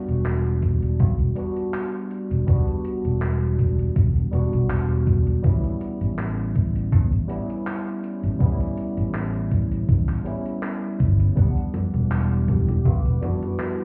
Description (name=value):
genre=vaporwave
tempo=81 BPM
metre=4/4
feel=swing 54% on 16ths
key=E dorian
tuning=A4 = 439 Hz
part: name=barky tine electric piano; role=accompaniment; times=0.0-13.8 s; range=G3 to F#5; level=-31 LUFS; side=equal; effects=analog chorus, vintage 12-bit sampler grit, analog delay
part: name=fingered electric bass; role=bass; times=0.1-13.2 s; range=E1 to E2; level=-24 LUFS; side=equal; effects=none
part: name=gated 80s digital drum machine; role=drums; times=0.1-13.8 s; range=congas, handclaps, hi-hat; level=-35 LUFS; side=equal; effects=gated reverb, overdrive
part: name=electronic kick drum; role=drums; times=0.6-13.0 s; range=none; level=-23 LUFS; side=equal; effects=overdrive
part: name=warbly tape-like pad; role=sustained chords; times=11.8-13.8 s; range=G3 to D6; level=-35 LUFS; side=equal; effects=chorus, built-in reverb, vintage 12-bit sampler grit
part: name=warm velvety synth lead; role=melody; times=12.1-13.8 s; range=G4 to B4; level=-38 LUFS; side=equal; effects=chorus, analog delay
room=light reverb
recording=heard muffled through a wall, club reverb, cassette tape, EQ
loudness=-23 LUFS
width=mono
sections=0.0-13.8 A section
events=none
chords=0.0 Em9; 5.4 A7; 11.4 Em9